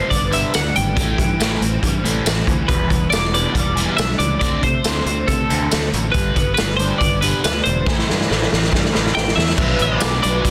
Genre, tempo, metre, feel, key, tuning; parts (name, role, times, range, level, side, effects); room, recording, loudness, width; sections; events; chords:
indie rock; 139 BPM; 4/4; straight; A4 = 440 Hz
twelve-string electric guitar; melody; 0.0-10.5 s; A4 to G5; -24 LUFS; equal; lush chorus, tape echo
overdriven electric guitar; riff; 0.0-10.5 s; E2 to B4; -28 LUFS; equal; analog chorus
overdriven semi-hollow guitar; riff; 0.0-10.5 s; G2 to B4; -26 LUFS; equal; phaser
fingered electric bass; bass; 0.1-10.5 s; E1 to C3; -26 LUFS; equal
raw garage drum kit; drums; 0.1-10.5 s; crash cymbal, hi-hat, kick drum, snare drum, tambourine; -22 LUFS; equal
studio reverb; dense, heavily limited modern master; -18 LUFS; mono
0.0-9.6 A section
drum fill 7.9-9.6
0.0 G; 1.0 Am7; 2.7 Em7; 4.4 D5; 6.1 G; 7.9 Am7; 9.6 Bm7